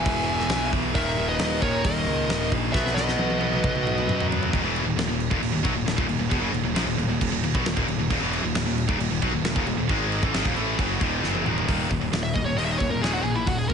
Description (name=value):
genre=heavy metal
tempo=134 BPM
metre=4/4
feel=straight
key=Eb phrygian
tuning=A4 = 440 Hz
part: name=high-gain lead guitar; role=melody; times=0.0-4.3, 12.2-13.7 s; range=Fb4 to G#5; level=-28 LUFS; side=left 1 dB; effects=distortion
part: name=high-gain lead guitar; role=second line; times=0.0-4.3 s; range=Bb4 to E5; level=-32 LUFS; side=right 3 dB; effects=distortion
part: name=high-gain distorted guitar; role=riff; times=0.0-13.7 s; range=Eb2 to B3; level=-28 LUFS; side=left 12 dB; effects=distortion
part: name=scooped high-gain guitar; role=riff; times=0.0-13.7 s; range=Eb2 to B3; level=-29 LUFS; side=right 15 dB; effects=distortion
part: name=fuzz picked electric bass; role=bass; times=0.0-13.7 s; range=Eb1 to F#2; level=-29 LUFS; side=equal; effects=overdrive
part: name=big rock drum kit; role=drums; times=0.1-13.7 s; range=crash cymbal, hi-hat, kick drum, snare drum, toms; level=-27 LUFS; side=equal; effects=none
room=light reverb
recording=nothing above 10.7 kHz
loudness=-22 LUFS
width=side -7 dB against mid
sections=0.0-4.5 A section; 4.5-11.7 B section; 11.7-13.7 C section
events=drum fill 2.7-4.5, 11.2-11.7; lead electric guitar solo 11.7-13.7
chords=0.0 E; 1.0 Eb5; 2.7 B; 4.5 Ebm; 11.7 Eb5